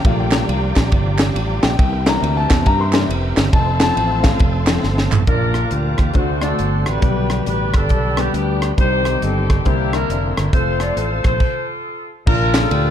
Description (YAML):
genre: uptempo gospel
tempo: 138 BPM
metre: 4/4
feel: swing 64% on 8ths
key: Bb major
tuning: A4 = 436 Hz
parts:
  - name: clear grand piano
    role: accompaniment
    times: 0.0-12.9 s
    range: Bb2 to C6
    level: -22 LUFS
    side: left 5 dB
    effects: none
  - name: bright tonewheel organ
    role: sustained chords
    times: 0.0-11.4 s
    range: D3 to Bb4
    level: -27 LUFS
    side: right 2 dB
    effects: slow rotary speaker, chorus vibrato
  - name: dark studio string section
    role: sustained chords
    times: 0.0-11.4 s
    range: B4 to D6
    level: -31 LUFS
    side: left 2 dB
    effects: none
  - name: fingered electric bass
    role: bass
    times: 0.0-12.9 s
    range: F1 to G2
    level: -20 LUFS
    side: equal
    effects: none
  - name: crisp fusion drum kit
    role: drums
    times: 0.0-12.8 s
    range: crash cymbal, hi-hat, kick drum, ride cymbal, rim click, snare drum, toms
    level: -18 LUFS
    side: equal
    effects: none
  - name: group handclap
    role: percussion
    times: 0.3-5.2, 12.5-12.6 s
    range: none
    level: -30 LUFS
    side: right 5 dB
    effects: none
  - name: clear saxophone section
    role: melody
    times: 5.3-12.9 s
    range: A3 to D5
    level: -22 LUFS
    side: equal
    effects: none
room: light reverb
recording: dark, warm production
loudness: -15 LUFS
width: side -10 dB against mid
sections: 0.0-5.3 A section; 5.3-12.3 B section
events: grand piano solo 0.0-5.3; drum fill 4.8-5.3; stop 11.4-12.3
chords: 0.1 Gm7/Bb; 1.8 C7; 3.5 F; 5.3 Bb; 6.2 D7; 7.0 G; 8.8 Cm; 9.7 C9; 10.5 F; 12.3 Bb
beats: | 0.05 0.48 0.92 1.35 | 1.79 2.23 2.66 3.10 | 3.53 3.97 4.40 4.84 | 5.28 5.71 6.15 6.59 | 7.03 7.46 7.90 8.34 | 8.78 9.22 9.65 10.09 | 10.53 10.97 11.40 11.84 | 12.28 12.71